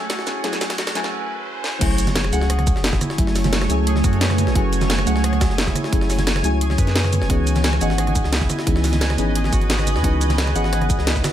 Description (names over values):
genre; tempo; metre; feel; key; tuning
liquid drum and bass; 175 BPM; 4/4; straight; F# minor; A4 = 438 Hz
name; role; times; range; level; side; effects
mellow FM electric piano; accompaniment; 0.0-11.3 s; E3 to G#5; -25 LUFS; left 2 dB; chorus, phaser, digital delay
shimmering ambient pad; sustained chords; 0.0-11.3 s; A3 to G#5; -28 LUFS; right 2 dB; chorus, built-in reverb, sidechain pumping
concert harp; arpeggios; 0.0-11.3 s; C#4 to F#5; -28 LUFS; right 1 dB; digital delay
saturated sub bass; bass; 0.0-11.2 s; E1 to F#2; -21 LUFS; equal; high-pass filter
riser and sub drop; sound effects; 0.1-3.2 s; none; -31 LUFS; equal; none
garage drum kit; drums; 0.1-11.3 s; crash cymbal, hi-hat, rim click, shaker, snare drum; -25 LUFS; equal; high-pass filter on perc, small room ambience, high-pass filter on snare, high-pass filter on hats, high-pass filter on cymbals
jungle sampler-style drum kit; drums; 0.1-11.3 s; hi-hat, snare drum; -29 LUFS; equal; high-pass filter on hats, small room ambience, high-pass filter on snare
electronic kick drum; drums; 1.8-11.2 s; none; -20 LUFS; equal; small room ambience
congas; percussion; 2.1-11.3 s; none; -28 LUFS; right 2 dB; none
room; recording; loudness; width
little or no reverb; high-pass filter; -17 LUFS; side -11 dB against mid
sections
0.0-1.8 A section; 1.8-11.3 B section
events
build-up 0.0-1.8; drum fill 0.0-1.1, 1.6; filter sweep on harp 0.0-1.8; break 1.1-1.8; drop 1.8-11.3; impact 1.8-3.2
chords
0.0 F#m7; 7.3 C#m7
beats
0.10 | 0.44 0.78 1.13 1.47 | 1.81 2.16 2.50 2.84 | 3.18 3.53 3.87 4.21 | 4.56 4.90 5.24 5.58 | 5.93 6.27 6.61 6.96 | 7.30 7.64 7.98 8.33 | 8.67 9.01 9.36 9.70 | 10.04 10.38 10.73 11.07